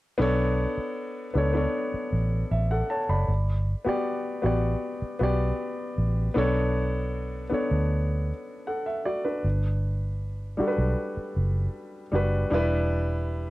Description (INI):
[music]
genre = lush 1970s-style soul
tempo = 78 BPM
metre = 4/4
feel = straight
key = B minor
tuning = A4 = 443 Hz
[part]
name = warm concert grand piano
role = accompaniment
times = 0.2-13.5 s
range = G3 to B5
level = -28 LUFS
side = left 1 dB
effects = none
[part]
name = vintage muted fingered electric bass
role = bass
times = 0.2-13.5 s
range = E1 to D2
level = -25 LUFS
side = equal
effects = none
[sound]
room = little or no reverb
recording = dry, close 1970s-style studio recording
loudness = -24 LUFS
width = side -17 dB against mid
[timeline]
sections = 0.2-6.4 A section; 6.4-13.5 B section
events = none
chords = 0.2 Bm9; 3.3 Gmaj7; 6.4 Bm9; 9.4 Gmaj7; 12.5 Em7